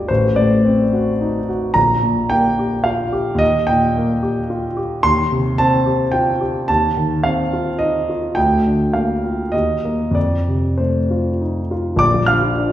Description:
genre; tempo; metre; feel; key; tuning
classical, romantic character piece for solo piano; 93-112 BPM; 3/4; rubato; Bb major from 5.0 s; A4 = 440 Hz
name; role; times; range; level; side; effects
warm concert grand piano; solo; 0.0-12.7 s; G1 to F6; -15 LUFS; equal; none
room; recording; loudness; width
wet recital hall reverb, RT60 1.6 s; heard from further back in the room; -15 LUFS; side -12 dB against mid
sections
0.0-12.0 A section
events
none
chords
0.1 D7/A; 1.8 Gm/Bb; 3.4 Eb; 5.0 Cm/Eb; 6.7 F7/Eb; 8.4 Bb/D; 9.5 Eb5; 10.2 F; 12.0 Bb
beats
| 0.09 0.65 1.21 | 1.76 2.31 2.85 | 3.40 3.96 4.50 | 5.05 5.59 6.13 | 6.68 7.24 7.80 | 8.36 8.93 9.53 | 10.15 10.79 11.41 | 12.00 12.57

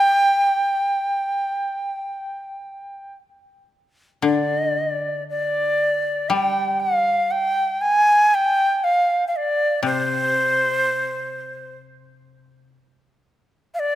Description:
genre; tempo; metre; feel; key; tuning
japanese traditional, Japanese chamber music; 59 BPM; 4/4; uneven beats, rubato; G in sen; A4 = 440 Hz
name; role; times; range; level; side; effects
bright shakuhachi; melody; 0.0-14.0 s; C5 to Ab5; -19 LUFS; equal; none
koto; accompaniment; 0.0-12.8 s; C3 to G3; -25 LUFS; left 5 dB; none
room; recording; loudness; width
moderate concert hall reverb, RT60 2.2 s; none; -18 LUFS; side -13 dB against mid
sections
0.0-4.3 A section; 4.3-14.0 B section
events
none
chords
none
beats
| 0.08 1.10 2.12 3.19 | 4.25 5.29 6.31 7.32 | 8.33 9.34 10.32 11.29 | 12.27 13.25

